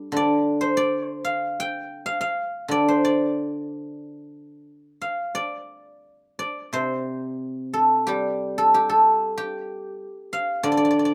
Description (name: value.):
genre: chinese traditional, Chinese solo plucked strings.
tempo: 86-97 BPM.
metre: 4/4.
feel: rubato.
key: G shang mode.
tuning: A4 = 440 Hz.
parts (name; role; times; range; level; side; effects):
guzheng; solo; 0.0-11.1 s; C3 to G5; -24 LUFS; equal; none.
room: light reverb.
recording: recorded outdoors, with no room sound.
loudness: -23 LUFS.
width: mono.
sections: 0.0-11.1 A section.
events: none.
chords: none.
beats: | 0.15 0.78 1.42 2.05 | 2.70 3.35 4.00 4.68 | 5.37 6.07 6.75 7.42 | 8.09 8.74 9.39 10.04 | 10.66.